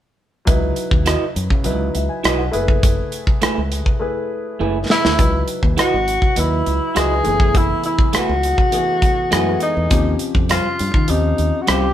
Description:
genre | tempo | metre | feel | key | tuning
lush 1970s-style soul | 102 BPM | 4/4 | straight | C# minor | A4 = 438 Hz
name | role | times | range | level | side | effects
warm concert grand piano | accompaniment | 0.5-11.9 s | E3 to G#5 | -24 LUFS | left 2 dB | none
modern bright fingered electric bass | bass | 0.5-11.9 s | F#1 to D#3 | -22 LUFS | equal | none
modern studio drum kit | drums | 0.5-11.8 s | hi-hat, kick drum, rim click, snare drum | -18 LUFS | equal | none
electric guitar through a small old amp | riff | 1.1-11.9 s | G3 to D#5 | -23 LUFS | right 4 dB | none
mellow tenor saxophone | melody | 4.9-11.9 s | D#4 to G#4 | -19 LUFS | equal | none
room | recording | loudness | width
light reverb | band playing live in one room | -15 LUFS | side -11 dB against mid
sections
0.5-5.2 A section; 5.2-11.9 B section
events
drum fill 4.0-5.2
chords
0.5 C#m11; 2.5 F#m11; 5.2 C#m11; 7.3 F#m11; 9.9 D#13

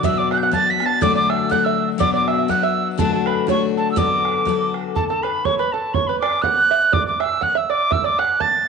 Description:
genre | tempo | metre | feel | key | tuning
celtic folk, Celtic polka | 122 BPM | 2/4 | swing 55% on 8ths | D major | A4 = 440 Hz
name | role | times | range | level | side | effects
mellow wooden whistle | melody | 0.0-8.7 s | A5 to B6 | -19 LUFS | right 2 dB | none
open-back banjo | second line | 0.0-8.7 s | A4 to A5 | -25 LUFS | right 10 dB | none
picked steel-string acoustic guitar | accompaniment | 0.0-5.5 s | B2 to A4 | -21 LUFS | left 13 dB | none
bodhran | percussion | 0.0-8.5 s | none | -26 LUFS | right 6 dB | none
room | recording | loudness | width
wet spring reverb, RT60 2.3 s | 1960s-style stereo with parts hard left and right, nothing above 10.6 kHz | -16 LUFS | side -5 dB against mid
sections
0.0-5.0 A section; 5.0-8.7 A section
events
none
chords
0.0 Bm; 1.0 D; 2.0 Bm; 3.0 D; 4.0 D6; 5.0 N.C.

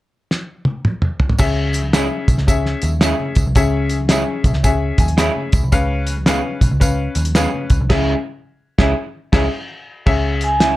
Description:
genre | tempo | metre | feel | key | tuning
uptempo 1960s-style soul | 111 BPM | 4/4 | swing 64% on 8ths | C# minor | A4 = 441 Hz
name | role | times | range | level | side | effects
cloth-damped thuddy drum kit | drums | 0.3-10.8 s | crash cymbal, hi-hat, kick drum, snare drum, toms | -17 LUFS | equal | none
clear upright piano | accompaniment | 1.4-10.8 s | C#3 to B5 | -21 LUFS | left 4 dB | none
vintage muted picked electric bass | bass | 1.4-10.7 s | B1 to D#2 | -19 LUFS | equal | none
congas | percussion | 1.4-7.9 s | none | -31 LUFS | right 1 dB | none
tambourine | percussion | 1.4-7.8 s | none | -32 LUFS | right 4 dB | none
electric guitar through a small old amp | stabs | 1.9-10.7 s | G#3 to G#4 | -22 LUFS | right 6 dB | slapback echo
vibraphone with medium hard mallets | melody | 10.4-10.8 s | G#5 | -16 LUFS | right 1 dB | none
room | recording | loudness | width
little or no reverb | dark, warm production | -15 LUFS | side -16 dB against mid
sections
0.0-1.4 A section; 1.4-10.1 B section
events
drum fill 0.3-1.4; upright piano fill 4.1-5.7; band accent 7.9-10.1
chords
0.0 N.C.; 1.4 C#m; 5.7 C#7; 7.9 C#m

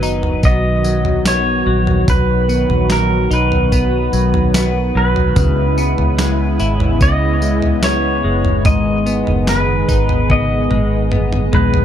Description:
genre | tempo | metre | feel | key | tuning
dream pop | 73 BPM | 4/4 | straight | unclear | A4 = 440 Hz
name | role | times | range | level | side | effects
pedal steel guitar | melody | 0.0-11.8 s | A#4 to D#5 | -20 LUFS | equal | tape echo
warm analog pad | sustained chords | 0.0-11.8 s | C#3 to G#4 | -20 LUFS | right 1 dB | chorus
semi-hollow electric guitar | arpeggios | 0.0-11.8 s | G#2 to E4 | -21 LUFS | left 4 dB | analog chorus, tape echo
vintage muted fingered electric bass | bass | 0.0-11.8 s | F#1 to C#2 | -18 LUFS | equal | none
clean 12-bit digital drum machine | drums | 0.0-11.8 s | kick drum, snare drum, tambourine, toms | -18 LUFS | right 1 dB | none
room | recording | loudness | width
light reverb | dark, warm production | -13 LUFS | side -10 dB against mid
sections
0.0-11.8 A section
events
drum fill 10.3-11.8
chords
0.0 B; 5.4 C#m7; 8.7 G#m

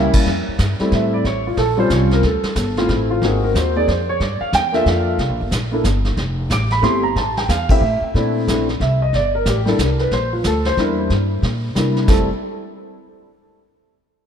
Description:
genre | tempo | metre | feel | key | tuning
jazz piano trio | 183 BPM | 3/4 | swing 63% on 8ths | F major | A4 = 439 Hz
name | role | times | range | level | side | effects
warm grand piano | melody | 0.0-12.3 s | G3 to D6 | -18 LUFS | equal | analog chorus, analog delay
upright bass | bass | 0.0-12.3 s | F1 to C3 | -20 LUFS | equal | none
vintage brush drum kit | drums | 0.1-12.4 s | brushed snare drum, crash cymbal, hi-hat, kick drum, ride cymbal, snare drum | -22 LUFS | equal | none
room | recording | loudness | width
moderate lush hall reverb, RT60 1.6 s, studio ambience | dreamy mix soaked in reverb | -15 LUFS | side -8 dB against mid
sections
0.3-8.1 A section; 8.1-12.1 B section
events
band accent 7.6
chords
0.3 Fmaj9; 1.2 A7alt; 2.2 Dm9; 3.2 Ab9; 4.2 Gm9; 5.2 C7(no3) (rootless); 6.2 Fmaj9; 8.1 Bbmaj9#11; 8.8 C; 9.1 Gmadd9; 9.8 Bbsus2/C; 10.1 Bb; 10.8 Em7b5; 11.1 Gm; 11.8 C9; 12.1 F

